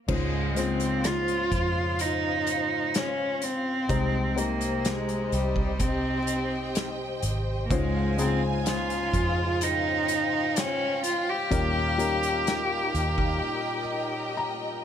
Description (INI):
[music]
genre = pop ballad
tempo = 63 BPM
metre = 4/4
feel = straight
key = unclear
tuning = A4 = 440 Hz
[part]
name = rich cello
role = melody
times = 0.1-14.4 s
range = G3 to G4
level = -28 LUFS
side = right 1 dB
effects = ping-pong delay
[part]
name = felt-muted upright piano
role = accompaniment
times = 0.1-14.8 s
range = Ab2 to Bb5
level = -32 LUFS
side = left 5 dB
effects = none
[part]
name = warm studio string section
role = sustained chords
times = 0.1-14.8 s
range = Eb4 to Ab5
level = -34 LUFS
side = right 1 dB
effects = none
[part]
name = vintage muted fingered electric bass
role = bass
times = 0.1-13.4 s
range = Ab1 to F2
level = -31 LUFS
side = right 1 dB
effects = none
[part]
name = loose indie drum kit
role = drums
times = 0.1-13.4 s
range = crash cymbal, hi-hat, kick drum, snare drum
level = -31 LUFS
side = equal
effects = none
[sound]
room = studio ambience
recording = none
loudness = -24 LUFS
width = side -9 dB against mid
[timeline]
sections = 0.1-14.8 A section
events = break 13.4-14.8; felt piano fill 13.9-14.8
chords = 0.1 Dbmaj7; 3.9 Abmaj7/C; 7.7 Dbmaj7; 11.5 Eb7